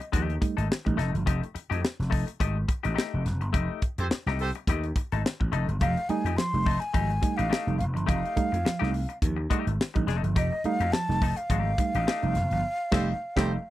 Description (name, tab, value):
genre	funk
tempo	106 BPM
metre	4/4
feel	swing 56% on 16ths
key	F mixolydian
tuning	A4 = 440 Hz
part	breathy jazz flute	melody	0.0-0.1, 5.8-13.7 s	Eb5 to C6	-30 LUFS	equal	none
part	semi-hollow electric guitar	accompaniment	0.0-13.6 s	A3 to A4	-34 LUFS	left 10 dB	vibrato effect
part	tight funk drum kit	drums	0.0-13.5 s	crash cymbal, hi-hat, kick drum, snare drum	-28 LUFS	equal	none
part	reed electric piano	stabs	0.1-1.3, 5.8-13.6 s	F3 to Eb4	-31 LUFS	right 5 dB	none
part	vintage slap bass	bass	0.1-13.6 s	F1 to F2	-28 LUFS	equal	none
part	clear horn section	second line	4.0-4.5, 12.9-13.5 s	G4 to C5	-32 LUFS	right 3 dB	none
room	little or no reverb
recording	dry, close 1970s-style studio recording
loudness	-25 LUFS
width	side -15 dB against mid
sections	0.0-13.7 A section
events	band accent 3.5-5.8, 12.6-13.7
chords	0.0 F9